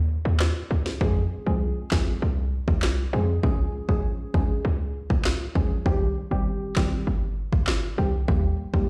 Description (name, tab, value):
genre	dancehall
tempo	99 BPM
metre	4/4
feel	straight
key	F minor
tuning	A4 = 440 Hz
part	short 808-style bass	bass	0.0-8.9 s	G1 to F2	-27 LUFS	equal	none
part	afro-pop drum kit	drums	0.4-8.9 s	handclaps, kick drum, rim click, snare drum	-27 LUFS	equal	overdrive
part	deep mellow chord stab	accompaniment	1.0-8.9 s	Eb3 to Ab4	-32 LUFS	equal	chorus
room	little or no reverb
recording	played on a big sound system in a bare room, stone room reverb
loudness	-25 LUFS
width	mono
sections	0.0-8.9 A section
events	break 0.0-1.0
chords	0.0 N.C.; 1.0 Fm; 3.4 Db; 5.9 Cm; 8.3 Eb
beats	0.40 | 1.01 1.62 2.22 2.83 | 3.43 4.04 4.65 5.25 | 5.86 6.46 7.07 7.68 | 8.28 8.89